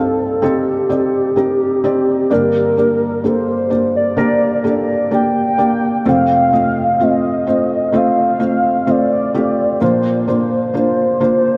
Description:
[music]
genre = pop ballad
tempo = 64 BPM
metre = 4/4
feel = straight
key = C dorian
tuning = A4 = 441 Hz
[part]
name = warm velvety synth lead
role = melody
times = 0.0-11.6 s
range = G4 to G5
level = -18 LUFS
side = equal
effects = chorus, tape echo
[part]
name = felt-muted upright piano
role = accompaniment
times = 0.0-11.6 s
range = C2 to F5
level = -18 LUFS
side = equal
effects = subtle chorus
[sound]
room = wet huge ambient reverb, RT60 4.2 s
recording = dreamy mix soaked in reverb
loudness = -15 LUFS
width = mono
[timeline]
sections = 0.0-11.6 A section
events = none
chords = 0.0 Cmadd9; 2.3 Gm; 6.1 F; 9.8 Bbadd9

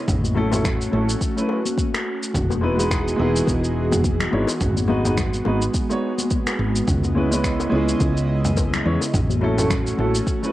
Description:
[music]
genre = sunset chillout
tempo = 106 BPM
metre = 4/4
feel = swing 57% on 16ths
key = C# minor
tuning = A4 = 440 Hz
[part]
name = airy breathy pad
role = sustained chords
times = 0.0-10.5 s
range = C#3 to D#5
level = -25 LUFS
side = right 1 dB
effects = chorus, cassette tape
[part]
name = woody fretless electric bass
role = bass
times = 0.1-10.2 s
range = E1 to E2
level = -23 LUFS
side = equal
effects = none
[part]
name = dusty soul sampler-style drum kit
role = drums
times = 0.1-10.5 s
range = finger snaps, shaker, toms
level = -26 LUFS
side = equal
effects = overdrive, cassette tape
[part]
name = electronic kick drum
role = drums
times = 0.1-10.4 s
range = none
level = -24 LUFS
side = equal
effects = cassette tape
[part]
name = congas and bongos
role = percussion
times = 0.2-10.1 s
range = none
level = -30 LUFS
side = left 8 dB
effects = none
[part]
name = warm baby grand piano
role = accompaniment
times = 0.3-10.5 s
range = F#3 to C#5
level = -25 LUFS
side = equal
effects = auto-pan, cassette tape, tape echo
[sound]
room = light reverb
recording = home recording on cassette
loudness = -18 LUFS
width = side -15 dB against mid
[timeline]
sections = 0.0-10.5 A section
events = none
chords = 0.1 A6; 2.3 Emaj7; 4.6 G#m7; 6.9 C#m7; 9.1 A6

